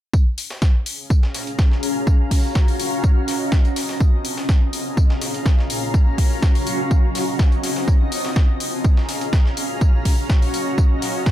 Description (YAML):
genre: piano house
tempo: 124 BPM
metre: 4/4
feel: straight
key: Bb minor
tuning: A4 = 440 Hz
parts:
  - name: breakbeat sampler-style drum kit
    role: drums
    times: 0.1-11.3 s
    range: hi-hat, snare drum, tambourine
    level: -32 LUFS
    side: equal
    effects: high-pass filter on perc, high-pass filter on snare, high-pass filter on hats
  - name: electronic kick drum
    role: drums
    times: 0.1-11.3 s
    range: none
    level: -15 LUFS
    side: equal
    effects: overdrive
  - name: granular cloud pad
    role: texture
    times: 1.3-11.3 s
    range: Db4 to Bb5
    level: -24 LUFS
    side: equal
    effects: built-in reverb, sidechain pumping
  - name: electronic hi-hat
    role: drums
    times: 0.4-11.1 s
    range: none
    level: -29 LUFS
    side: left 5 dB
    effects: overdrive
room: digital ambience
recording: none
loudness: -16 LUFS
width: side -13 dB against mid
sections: 0.1-11.3 A section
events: none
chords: 0.1 Bbm7; 0.9 Gbmaj7/Bb; 1.8 Ebm7; 3.0 F7; 4.0 Bbm7; 4.7 Gbmaj7/Bb; 5.7 Ebm7; 6.9 F7; 7.9 Bbm7; 8.6 Gbmaj7/Bb; 9.6 Ebm7; 10.8 F7